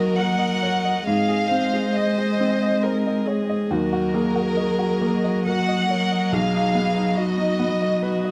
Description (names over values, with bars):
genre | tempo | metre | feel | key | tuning
neoclassical piano and strings | 69 BPM | 3/4 | rubato | Eb minor | A4 = 440 Hz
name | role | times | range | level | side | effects
warm chamber violin section | melody | 0.0-8.3 s | Bb4 to Gb5 | -27 LUFS | equal | none
dark cello | second line | 0.0-8.3 s | Gb3 to Ab3 | -26 LUFS | equal | none
clear upright piano | accompaniment | 0.0-8.3 s | B1 to Eb5 | -29 LUFS | equal | none
warm viola | accompaniment | 0.0-8.3 s | F#4 to C5 | -31 LUFS | equal | none
warm chamber string section | sustained chords | 0.0-8.3 s | Bb3 to Eb5 | -34 LUFS | equal | none
room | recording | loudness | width
light reverb | close, detailed microphones | -22 LUFS | mono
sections
0.0-8.3 A section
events
none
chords
0.0 Ebm; 1.1 Ab; 3.7 Ebm; 6.3 B